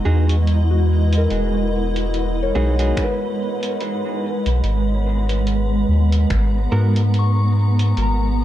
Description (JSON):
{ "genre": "ambient dub", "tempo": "72 BPM", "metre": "4/4", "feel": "swing 57% on 16ths", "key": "unclear", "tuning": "A4 = 436 Hz", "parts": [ { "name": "granular cloud pad", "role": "sustained chords", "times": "0.0-8.4 s", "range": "G#3 to A#5", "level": "-23 LUFS", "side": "right 1 dB", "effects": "built-in reverb" }, { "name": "soft synth bell", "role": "arpeggios", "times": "0.0-8.4 s", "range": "F#4 to C#6", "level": "-28 LUFS", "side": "left 3 dB", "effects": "chorus, dub echo" }, { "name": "wind-like tuned noise texture", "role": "texture", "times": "0.0-8.4 s", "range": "B3 to B4", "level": "-32 LUFS", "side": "equal", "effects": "built-in reverb" }, { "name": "clean electric guitar", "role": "stabs", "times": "0.1-7.0 s", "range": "B3 to A#4", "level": "-30 LUFS", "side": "right 3 dB", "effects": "dub echo" }, { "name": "soft dub sub bass", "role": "bass", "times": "0.1-8.4 s", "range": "E1 to G#2", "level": "-17 LUFS", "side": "equal", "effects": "tube saturation" }, { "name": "lo-fi sampler-style drum kit", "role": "drums", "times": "0.3-8.2 s", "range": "finger snaps, hi-hat", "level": "-32 LUFS", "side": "right 1 dB", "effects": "none" }, { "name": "electronic kick drum", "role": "drums", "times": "3.0-6.5 s", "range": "none", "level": "-23 LUFS", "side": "equal", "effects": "overdrive" } ], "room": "light reverb", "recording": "dark, warm production", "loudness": "-16 LUFS", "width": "side -13 dB against mid", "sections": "0.0-8.4 A section", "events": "none", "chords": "0.0 Emaj9; 4.6 G#m9", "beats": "0.47 | 1.31 2.14 2.97 3.81 | 4.64 5.47 6.31 7.14 | 7.97" }